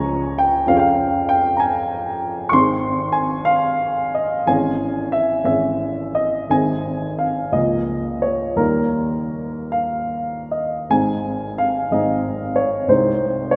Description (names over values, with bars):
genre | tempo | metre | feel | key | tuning
classical, romantic nocturne for solo piano | 49-67 BPM (dotted quarters) | 12/8 | rubato | Ab major | A4 = 440 Hz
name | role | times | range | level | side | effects
warm upright piano | solo | 0.0-13.6 s | Ab1 to Db6 | -20 LUFS | equal | none
room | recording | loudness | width
wet cathedral reverb, RT60 4.5 s | recorded in a church or concert hall | -20 LUFS | mono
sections
0.0-13.6 A section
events
none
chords
0.0 Db; 0.7 Db/F; 2.6 Ab; 4.5 Dbm/Ab; 6.5 Ab; 7.6 Bbm/Db; 8.6 Eb; 10.9 Ab; 12.9 Ab/C